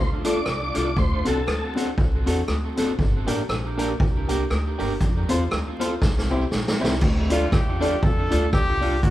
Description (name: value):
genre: ska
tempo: 119 BPM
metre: 4/4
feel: swing 58% on 8ths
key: D minor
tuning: A4 = 438 Hz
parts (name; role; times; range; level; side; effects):
- tonewheel organ; melody; 0.0-1.7 s; A4 to D5; -29 LUFS; equal; chorus vibrato, fast rotary speaker
- upright bass; bass; 0.0-9.1 s; F#1 to F2; -26 LUFS; equal; none
- electric guitar at the edge of break-up; accompaniment; 0.2-9.0 s; C4 to Bb4; -28 LUFS; right 2 dB; tape echo
- dark upright piano; stabs; 0.2-8.9 s; A3 to D5; -28 LUFS; left 3 dB; none
- street-band drum kit; drums; 0.2-9.1 s; crash cymbal, hi-hat, kick drum, rim click, snare drum; -24 LUFS; equal; none
- bright trumpet; melody; 7.3-9.1 s; F4 to A4; -26 LUFS; left 1 dB; none
room: moderate large studio reverb, RT60 1.1 s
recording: band playing live in one room, vinyl crackle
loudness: -20 LUFS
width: side -14 dB against mid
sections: 0.0-7.0 A section; 7.0-9.1 B section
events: drum fill 6.0-7.0; trumpet solo 7.0-9.1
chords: 0.0 Dm; 1.0 D7; 3.0 Gm; 5.0 F; 6.0 C; 7.0 Dm